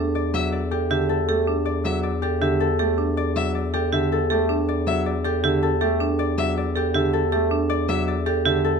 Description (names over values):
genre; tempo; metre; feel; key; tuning
classical, minimalist pattern music; 159 BPM; 4/4; straight; E minor; A4 = 440 Hz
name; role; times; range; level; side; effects
concert harp; melody; 0.0-8.8 s; G4 to E5; -27 LUFS; left 9 dB; none
marimba with hard mallets; arpeggios; 0.0-8.7 s; D4 to A4; -24 LUFS; right 11 dB; none
warm bass clarinet; bass; 0.0-8.8 s; E2; -25 LUFS; left 2 dB; none
clear concert grand piano; accompaniment; 0.3-8.7 s; D3 to A3; -28 LUFS; right 1 dB; none
rich violin; arpeggios; 0.3-8.0 s; E5; -30 LUFS; left 6 dB; none
room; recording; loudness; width
light reverb; none; -20 LUFS; side -6 dB against mid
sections
0.0-8.8 A section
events
none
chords
0.0 Em9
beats
0.34 0.72 | 1.09 1.47 1.85 2.23 | 2.60 2.98 3.36 3.73 | 4.11 4.49 4.87 5.24 | 5.62 6.00 6.38 6.75 | 7.13 7.51 7.89 8.26 | 8.64